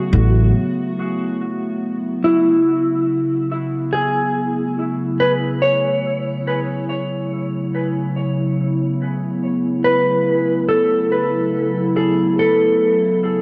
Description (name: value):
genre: ambient dub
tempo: 71 BPM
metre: 4/4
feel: swing 55% on 16ths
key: F# minor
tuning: A4 = 440 Hz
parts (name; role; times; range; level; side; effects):
- clean lap steel guitar; melody; 0.0-13.4 s; E4 to C#5; -21 LUFS; equal; cassette tape, dub echo
- warbly tape-like pad; sustained chords; 0.0-13.4 s; C#3 to E4; -23 LUFS; equal; chorus, built-in reverb, cassette tape
- upright bass; bass; 0.1-0.5 s; A1; -15 LUFS; equal; none
room: wet lush hall reverb, RT60 2.8 s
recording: home recording on cassette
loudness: -19 LUFS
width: mono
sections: 0.0-2.2 A section; 2.2-13.4 B section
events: break 0.6-2.2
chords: 0.0 F#m7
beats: 0.55 1.40 | 2.24 3.09 3.93 4.78 | 5.62 6.47 7.31 8.16 | 9.00 9.85 10.69 11.54 | 12.38 13.23